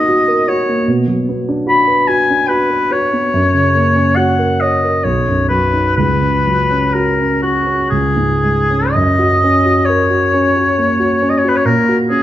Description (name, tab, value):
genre	classical, romantic duo for oboe and grand piano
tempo	56-75 BPM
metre	3/4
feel	rubato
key	F# major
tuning	A4 = 440 Hz
part	clear oboe	melody	0.0-12.2 s	F#4 to B5	-14 LUFS	left 2 dB	none
part	dark concert grand piano	accompaniment	0.0-12.2 s	B1 to C#5	-14 LUFS	right 1 dB	none
room	wet recital hall reverb, RT60 1.6 s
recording	none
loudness	-11 LUFS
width	side -12 dB against mid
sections	0.0-8.9 A section; 8.9-12.2 B section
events	none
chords	0.0 Bmaj7; 0.9 Bm; 3.3 F#; 5.0 B; 6.0 F#5/C#; 7.9 C#5; 8.9 F#; 11.7 F#/A#